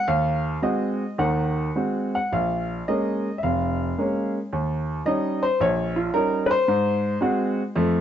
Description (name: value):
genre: solo jazz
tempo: 109 BPM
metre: 4/4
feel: swing 68% on 8ths, rubato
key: Ab mixolydian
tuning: A4 = 436 Hz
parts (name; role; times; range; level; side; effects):
- clear upright piano; solo; 0.0-8.0 s; F1 to Gb5; -21 LUFS; equal; none
room: moderate large studio reverb, RT60 1.1 s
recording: dark, warm production, nothing above 7.8 kHz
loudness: -21 LUFS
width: side -10 dB against mid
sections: 0.0-8.0 A section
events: upright piano solo 0.0-8.0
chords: 0.0 Ab7; 2.3 Bbm7; 4.5 Eb7; 6.7 Ab7